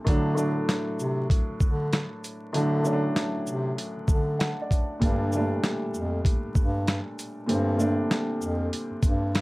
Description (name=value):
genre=hip hop, boom-bap hip-hop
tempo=97 BPM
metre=4/4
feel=swing 59% on 16ths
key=G harmonic minor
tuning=A4 = 441 Hz
part: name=dark upright piano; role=accompaniment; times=0.0-9.4 s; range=A2 to F#5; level=-28 LUFS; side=equal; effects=cassette tape, high-pass filter, low-pass filter
part: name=mellow bass clarinet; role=bass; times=0.1-9.4 s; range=F2 to D3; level=-27 LUFS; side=equal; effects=none
part: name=boom bap sampler-style drum kit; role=drums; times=0.1-9.4 s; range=hi-hat, kick drum, shaker, snare drum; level=-25 LUFS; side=equal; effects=none
room=little or no reverb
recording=vinyl crackle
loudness=-24 LUFS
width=side -21 dB against mid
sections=0.0-9.4 A section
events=none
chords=0.1 D; 5.0 Gmadd9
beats=| 0.07 0.69 1.30 1.92 | 2.54 3.16 3.78 4.40 | 5.01 5.63 6.25 6.87 | 7.49 8.11 8.73 9.35